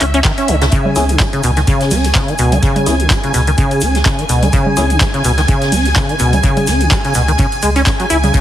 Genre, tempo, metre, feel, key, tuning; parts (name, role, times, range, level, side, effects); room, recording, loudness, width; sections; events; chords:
acid house; 126 BPM; 4/4; swing 56% on 16ths; C# minor; A4 = 440 Hz
string machine, full ensemble; sustained chords; 0.0-8.4 s; E5 to G#5; -20 LUFS; equal; ensemble chorus, sidechain pumping
acid bass, saw; riff; 0.0-8.4 s; B2 to E4; -16 LUFS; equal; tube saturation, ensemble chorus, tape echo
warm sub bass; bass; 0.0-8.3 s; C#2; -16 LUFS; equal; sidechain pumping
electro analog drum machine; drums; 0.0-8.4 s; congas, handclaps, hi-hat; -19 LUFS; right 1 dB
electronic kick drum; drums; 0.2-8.4 s; -16 LUFS; equal
open jazz drum kit; drums; 0.2-8.4 s; hi-hat, snare drum; -27 LUFS; left 2 dB; high-pass filter on hats, high-pass filter on snare, high-pass filter on room
tube shaker; percussion; 0.7-8.4 s; -28 LUFS; right 5 dB
percussive organ stab; stabs; 1.0-4.9 s; C#4 to G#4; -22 LUFS; left 2 dB; lush chorus, tape echo
light reverb, digital ambience; heavily compressed radio sound, multiband compression; -11 LUFS; side -12 dB against mid
0.0-8.4 A section
0.0 C#m